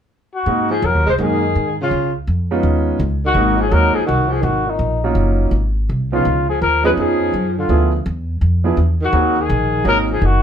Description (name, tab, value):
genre	jazz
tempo	166 BPM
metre	4/4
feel	swing 65% on 8ths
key	Ab mixolydian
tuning	A4 = 441 Hz
part	dark trumpet	melody	0.3-10.4 s	Eb4 to C5	-18 LUFS	left 3 dB	none
part	clear concert grand piano	accompaniment	0.5-10.1 s	F3 to Ab4	-20 LUFS	right 3 dB	none
part	upright bass	bass	0.5-10.4 s	Gb1 to Ab2	-18 LUFS	equal	none
part	breathy tenor saxophone	second line	0.7-10.4 s	Bb2 to Ab3	-22 LUFS	right 1 dB	none
room	moderate studio ambience, RT60 0.5 s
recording	heard from further back in the room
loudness	-14 LUFS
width	side -8 dB against mid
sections	0.5-10.4 A section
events	none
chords	0.5 Ab7; 1.9 Db7; 3.4 Ab7; 4.8 Ebm7; 5.5 Ab; 6.3 Db7; 7.7 Ddim7; 9.1 Ab7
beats	0.10 | 0.47 0.83 1.19 1.55 | 1.91 2.27 2.64 3.00 | 3.36 3.72 4.08 4.44 | 4.81 5.17 5.53 5.89 | 6.25 6.61 6.97 7.33 | 7.70 8.06 8.42 8.78 | 9.14 9.50 9.86 10.22